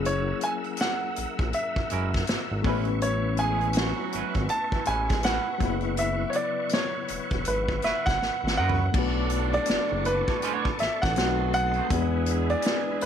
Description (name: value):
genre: R&B, neo-soul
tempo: 81 BPM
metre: 4/4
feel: swing 60% on 16ths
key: B dorian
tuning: A4 = 440 Hz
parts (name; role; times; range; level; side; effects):
- overdriven reed electric piano; accompaniment; 0.0-13.1 s; C#3 to B4; -33 LUFS; left 12 dB; fast tremolo
- tonewheel organ; sustained chords; 0.0-13.1 s; A4 to E6; -35 LUFS; equal; chorus vibrato, fast rotary speaker
- smooth synth bass; bass; 0.0-13.1 s; E1 to F#2; -28 LUFS; equal; none
- clear baby grand piano; melody; 0.1-13.1 s; B4 to A5; -28 LUFS; right 1 dB; none
- unplugged drum kit; drums; 0.1-13.1 s; crash cymbal, hi-hat, kick drum, snare drum, toms; -29 LUFS; equal; none
- twangy electric guitar; second line; 1.9-11.9 s; G#3 to C#5; -33 LUFS; right 14 dB; wide subtle chorus
- clear horn section; stabs; 3.4-13.1 s; A2 to G#4; -34 LUFS; right 12 dB; none
room: light reverb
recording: 1960s-style stereo with parts hard left and right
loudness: -24 LUFS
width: side -8 dB against mid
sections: 0.0-8.9 A section; 8.9-13.1 B section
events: drum fill 8.2-8.9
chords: 0.0 F#9; 2.6 Amaj9; 5.6 F#7sus4; 8.9 Bm9; 11.2 B7b9; 11.9 E7